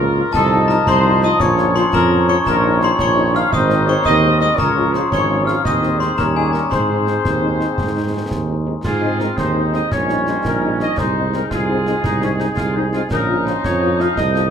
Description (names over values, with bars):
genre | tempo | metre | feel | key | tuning
military-style march for wind band | 113 BPM (dotted quarters) | 6/8 | straight | Ab major | A4 = 440 Hz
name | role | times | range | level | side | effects
mellow trumpet section | melody | 0.0-14.5 s | Ab4 to F5 | -21 LUFS | equal | none
glockenspiel with hard plastic mallets | second line | 0.0-8.6 s | Ab5 to F6 | -21 LUFS | left 5 dB | none
warm woodwind section | second line | 0.0-14.5 s | Db4 to Eb5 | -23 LUFS | left 2 dB | none
mellow French horn section | accompaniment | 0.0-14.4 s | F3 to F4 | -26 LUFS | left 4 dB | none
bright trombone section | sustained chords | 0.0-14.5 s | Eb3 to Eb4 | -26 LUFS | right 2 dB | none
mellow tuba | bass | 0.0-14.5 s | Ab1 to Ab2 | -19 LUFS | right 3 dB | none
concert snare drum, clash cymbals and concert bass drum | drums | 0.3-14.5 s | none | -26 LUFS | equal | none
room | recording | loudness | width
moderate large studio reverb, RT60 0.9 s | none | -14 LUFS | side -8 dB against mid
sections
0.0-8.8 A section; 8.8-14.5 A section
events
none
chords
0.3 F7/C; 1.4 Bbm; 2.5 Eb7/Bb; 3.5 Ab; 4.6 Db; 5.7 Ab/Eb; 6.2 Eb7; 6.7 Ab; 9.9 Eb7/Bb; 11.0 Ab/C; 13.1 Bbm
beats
| 0.34 0.87 | 1.40 1.93 | 2.46 3.00 | 3.53 4.06 | 4.59 5.12 | 5.65 6.19 | 6.72 7.25 | 7.78 8.31 | 8.85 9.38 | 9.91 10.44 | 10.98 11.51 | 12.04 12.57 | 13.11 13.64 | 14.17